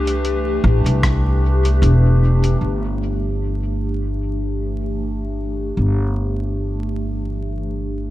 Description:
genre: ambient dub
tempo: 76 BPM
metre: 4/4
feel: swing 56% on 16ths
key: unclear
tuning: A4 = 444 Hz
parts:
  - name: warbly tape-like pad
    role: sustained chords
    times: 0.0-8.1 s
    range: E3 to B4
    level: -24 LUFS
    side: left 1 dB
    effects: chorus, built-in reverb, phaser
  - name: upright bass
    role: bass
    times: 0.0-8.1 s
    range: E1 to C2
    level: -18 LUFS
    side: equal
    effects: none
  - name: lo-fi sampler-style drum kit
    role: drums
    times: 0.1-2.6 s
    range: hi-hat, rim click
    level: -25 LUFS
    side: equal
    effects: dub echo
  - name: electronic kick drum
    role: drums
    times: 1.0-1.2 s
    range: none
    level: -22 LUFS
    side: equal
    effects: overdrive
room: little or no reverb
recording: echo-heavy mix, vinyl crackle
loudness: -17 LUFS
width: side -15 dB against mid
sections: 0.0-2.6 A section; 2.6-8.1 B section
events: none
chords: 0.0 Am7; 2.6 G69

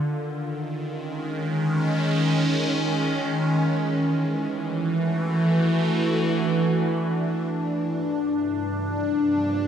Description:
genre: ambient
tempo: free time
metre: none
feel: none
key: unclear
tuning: A4 = 440 Hz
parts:
  - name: evolving wavetable pad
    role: sustained chords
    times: 0.0-9.7 s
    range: G2 to F#4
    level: -22 LUFS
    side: equal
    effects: phaser, built-in reverb
room: wet cathedral reverb, RT60 6.1 s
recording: none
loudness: -22 LUFS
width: side -8 dB against mid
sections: 0.0-7.5 A section; 7.5-9.7 B section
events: none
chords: 0.0 Db; 3.6 D; 7.5 Gm

